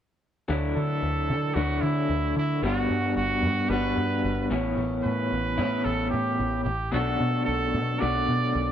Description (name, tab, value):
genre	rock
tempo	112 BPM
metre	4/4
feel	straight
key	D major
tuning	A4 = 440 Hz
part	electric guitar through a small old amp	riff	0.5-8.7 s	A2 to F#4	-27 LUFS	left 1 dB	tremolo
part	overdriven picked electric bass	bass	0.5-8.7 s	G1 to D3	-28 LUFS	equal	none
part	bright trumpet	melody	0.8-8.7 s	E4 to D5	-29 LUFS	right 3 dB	none
room	light reverb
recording	band playing live in one room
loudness	-23 LUFS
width	side -9 dB against mid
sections	0.5-8.7 A section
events	none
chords	0.5 Dadd9; 2.6 Gmaj7; 4.5 Aadd9; 6.9 Bm7